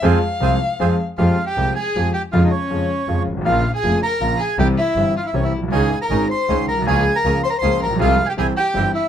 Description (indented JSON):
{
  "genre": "tango",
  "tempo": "159 BPM",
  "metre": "3/4",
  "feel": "rubato",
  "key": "F minor",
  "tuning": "A4 = 440 Hz",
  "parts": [
    { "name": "warm violin", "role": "second line", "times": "0.0-9.1 s", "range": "Db4 to F5", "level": "-24 LUFS", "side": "left 4 dB", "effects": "none" },
    { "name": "clear concert grand piano", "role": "accompaniment", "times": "0.0-8.9 s", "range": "F1 to Ab4", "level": "-21 LUFS", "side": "left 1 dB", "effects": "none" },
    { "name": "bandoneon", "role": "stabs", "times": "0.0-1.0, 5.7-8.9 s", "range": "Bb3 to Ab4", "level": "-26 LUFS", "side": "right 8 dB", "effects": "none" },
    { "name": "clear double bass", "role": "bass", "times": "0.0-8.9 s", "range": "F1 to F2", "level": "-21 LUFS", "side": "right 1 dB", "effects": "none" },
    { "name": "bandoneon", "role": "melody", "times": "1.2-9.1 s", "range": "Db5 to C6", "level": "-22 LUFS", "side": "right 3 dB", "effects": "none" }
  ],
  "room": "light reverb",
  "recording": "close, detailed microphones",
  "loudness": "-16 LUFS",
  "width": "side -9 dB against mid",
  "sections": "0.0-1.2 A section; 1.2-9.1 B section",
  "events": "violin solo 0.0-1.2",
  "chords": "0.0 Fm; 1.2 Fmadd9; 2.3 Db/F; 3.5 Bbm; 4.6 C; 5.7 Dbsus2; 6.9 Bbm7/Db; 8.0 Fm/C; 8.4 C",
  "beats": "| 0.03 0.41 0.79 | 1.18 1.56 1.95 | 2.33 2.70 3.08 | 3.46 3.83 4.21 | 4.58 4.96 5.34 | 5.72 6.11 6.49 | 6.87 7.25 7.63 | 8.00 8.37 8.74"
}